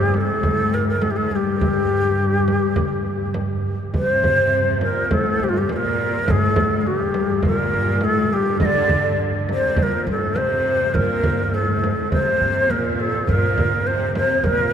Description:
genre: Arabic maqam ensemble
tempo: 103 BPM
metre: 4/4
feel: straight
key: G maqam bayati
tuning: A4 = 443 Hz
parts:
  - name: breathy ney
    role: melody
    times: 0.0-14.7 s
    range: F4 to Eb5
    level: -20 LUFS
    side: equal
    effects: none
  - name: clear symphonic cello section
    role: second line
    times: 0.0-14.7 s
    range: G2 to D3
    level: -25 LUFS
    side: left 2 dB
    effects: none
  - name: upright bass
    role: bass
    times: 0.0-14.6 s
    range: G2 to G3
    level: -25 LUFS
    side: equal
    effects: none
  - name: frame drum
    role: percussion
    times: 0.1-14.6 s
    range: none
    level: -25 LUFS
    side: right 1 dB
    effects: none
room: wet cathedral reverb, RT60 5.6 s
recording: recorded in a church or concert hall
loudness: -17 LUFS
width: side -8 dB against mid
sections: 0.0-3.9 A section; 3.9-14.7 B section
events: none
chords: none

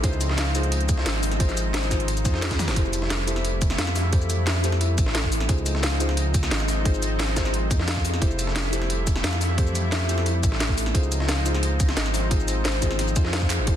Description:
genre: liquid drum and bass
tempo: 176 BPM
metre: 4/4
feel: straight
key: unclear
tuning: A4 = 440 Hz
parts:
  - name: deep mellow chord stab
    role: accompaniment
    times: 0.0-13.8 s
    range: E3 to C5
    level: -32 LUFS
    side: left 2 dB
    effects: chorus, digital delay
  - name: lush unison pad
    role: sustained chords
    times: 0.0-13.8 s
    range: F3 to E4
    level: -33 LUFS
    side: equal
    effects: chorus, sidechain pumping
  - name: dark detuned saw bass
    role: bass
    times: 0.0-13.8 s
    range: F1 to F2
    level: -25 LUFS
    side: equal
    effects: none
  - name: breakbeat sampler-style drum kit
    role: drums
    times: 0.0-13.8 s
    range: hi-hat, snare drum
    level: -31 LUFS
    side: equal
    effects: high-pass filter on hats, high-pass filter on snare, high-pass filter on room
  - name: electronic kick drum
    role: drums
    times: 0.0-13.7 s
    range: none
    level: -23 LUFS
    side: equal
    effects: none
  - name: garage drum kit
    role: drums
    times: 0.0-13.7 s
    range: handclaps, hi-hat, shaker, snare drum, toms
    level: -28 LUFS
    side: equal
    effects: none
  - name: kalimba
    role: arpeggios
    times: 0.4-13.8 s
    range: Eb4 to F5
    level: -35 LUFS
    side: left 5 dB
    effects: ping-pong delay
room: light reverb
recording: dense, heavily limited modern master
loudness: -21 LUFS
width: side -10 dB against mid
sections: 0.0-2.8 A section; 2.8-13.8 A section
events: drop 0.0-2.8, 2.8-13.8; drum fill 2.5, 13.5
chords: 0.0 Dbmaj9; 2.8 Fmaj9; 5.5 Dbmaj9; 8.2 Fmaj9; 10.9 Dbmaj9

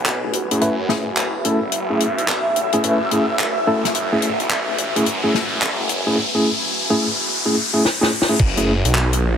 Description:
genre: glitch hop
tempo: 108 BPM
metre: 4/4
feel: swing 63% on 16ths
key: F# minor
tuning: A4 = 443 Hz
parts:
  - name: phased detuned saw bass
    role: bass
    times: 0.0-9.4 s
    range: E1 to F#2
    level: -24 LUFS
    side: right 1 dB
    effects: phaser, tube saturation, high-pass filter
  - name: riser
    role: sound effects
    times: 1.3-8.4 s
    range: none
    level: -25 LUFS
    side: left 1 dB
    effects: none
  - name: granular cloud pad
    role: texture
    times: 0.0-9.4 s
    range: F#4 to G#5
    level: -25 LUFS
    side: equal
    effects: built-in reverb, sidechain pumping
  - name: compact cocktail drum kit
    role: drums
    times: 0.1-9.2 s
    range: crash cymbal, handclaps, hi-hat, snare drum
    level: -22 LUFS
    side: left 2 dB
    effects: none
  - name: tine electric piano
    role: stabs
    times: 0.5-8.7 s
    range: A3 to B4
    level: -21 LUFS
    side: equal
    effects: medium tremolo, sidechain pumping, low-pass filter, ping-pong delay
  - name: electronic kick drum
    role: drums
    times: 8.4-8.5 s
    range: none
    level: -17 LUFS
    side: equal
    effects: none
room: light reverb, small room ambience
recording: heavily compressed radio sound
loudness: -16 LUFS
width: side -8 dB against mid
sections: 0.0-8.4 A section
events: build-up 0.0-8.4; riser 1.3-8.4; drum fill 7.8-8.4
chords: 0.0 F#m7

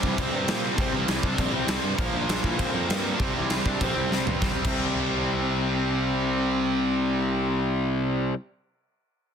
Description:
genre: punk rock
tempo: 198 BPM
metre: 4/4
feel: straight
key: C mixolydian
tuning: A4 = 440 Hz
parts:
  - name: bluesy overdriven lead guitar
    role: melody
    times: 0.0-7.6 s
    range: E3 to D5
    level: -32 LUFS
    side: left 2 dB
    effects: distortion
  - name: distorted electric guitar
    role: riff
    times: 0.0-8.4 s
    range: Bb2 to C4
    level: -29 LUFS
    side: left 11 dB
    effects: overdrive
  - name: distorted electric guitar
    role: riff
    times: 0.0-8.3 s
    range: Bb2 to C4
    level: -30 LUFS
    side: right 14 dB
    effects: overdrive
  - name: fuzz picked electric bass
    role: bass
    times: 0.0-8.3 s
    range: Bb1 to Bb2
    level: -29 LUFS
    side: right 1 dB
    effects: overdrive
  - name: big rock drum kit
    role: drums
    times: 0.0-4.7 s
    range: crash cymbal, kick drum, snare drum, toms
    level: -28 LUFS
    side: right 1 dB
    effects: soft clipping on kick, soft clipping on snare
room: little or no reverb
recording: dense, heavily limited modern master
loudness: -23 LUFS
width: side -7 dB against mid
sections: 0.0-4.4 A section; 4.4-6.8 B section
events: drum fill 4.1-4.4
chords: 0.0 C; 2.0 Bb; 3.2 C; 4.4 C5

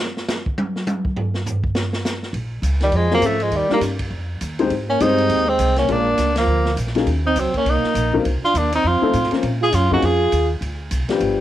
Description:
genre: jazz, small-group swing and bop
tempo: 203 BPM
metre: 4/4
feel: swing 60% on 8ths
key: Bb minor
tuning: A4 = 439 Hz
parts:
  - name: open jazz drum kit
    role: drums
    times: 0.2-11.3 s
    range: hi-hat, kick drum, ride cymbal, snare drum, toms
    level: -26 LUFS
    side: right 1 dB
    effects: cassette tape
  - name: upright bass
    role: bass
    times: 2.3-11.4 s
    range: G1 to Bb2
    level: -22 LUFS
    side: equal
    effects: none
  - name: warm tenor saxophone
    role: melody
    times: 2.8-10.5 s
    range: G3 to Ab4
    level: -19 LUFS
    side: left 1 dB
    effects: cassette tape, plate reverb
  - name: mellow trombone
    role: second line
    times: 2.8-10.5 s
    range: Eb3 to F4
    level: -24 LUFS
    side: right 8 dB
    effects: cassette tape, plate reverb
  - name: warm upright piano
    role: accompaniment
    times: 3.1-11.4 s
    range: F3 to C5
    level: -21 LUFS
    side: left 5 dB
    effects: cassette tape, plate reverb
room: moderate small room reverb, RT60 0.5 s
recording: home recording on cassette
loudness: -17 LUFS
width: side -12 dB against mid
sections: 0.0-2.3 A section; 2.3-11.4 B section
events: drum solo 0.0-2.3; band accent 6.3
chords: 0.0 N.C.; 2.3 Bbm7; 3.5 Eb; 4.7 Abmaj7; 5.9 Bb7; 7.1 Eb7(no3); 8.3 Cm11; 8.8 F7; 9.4 Bb7(no3); 10.6 Csus24

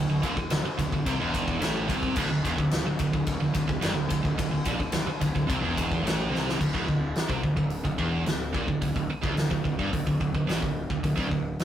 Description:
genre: heavy metal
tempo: 108 BPM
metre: 4/4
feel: straight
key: unclear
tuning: A4 = 439 Hz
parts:
  - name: distorted electric guitar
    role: riff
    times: 0.0-11.5 s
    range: D2 to C3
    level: -34 LUFS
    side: left 6 dB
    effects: distortion
  - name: high-gain distorted guitar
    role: riff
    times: 0.0-11.5 s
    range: D2 to C3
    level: -28 LUFS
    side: right 3 dB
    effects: distortion
  - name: fuzz picked electric bass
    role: bass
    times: 0.0-11.6 s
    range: D1 to C2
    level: -34 LUFS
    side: left 1 dB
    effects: overdrive
  - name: big rock drum kit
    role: drums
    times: 0.2-11.6 s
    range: crash cymbal, hi-hat, kick drum, ride cymbal, snare drum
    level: -29 LUFS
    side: left 1 dB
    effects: none
room: light reverb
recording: rough rehearsal-room recording, warm saturation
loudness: -24 LUFS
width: side -10 dB against mid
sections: 0.0-6.6 A section; 6.6-11.6 B section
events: drum fill 6.3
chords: 0.0 D5

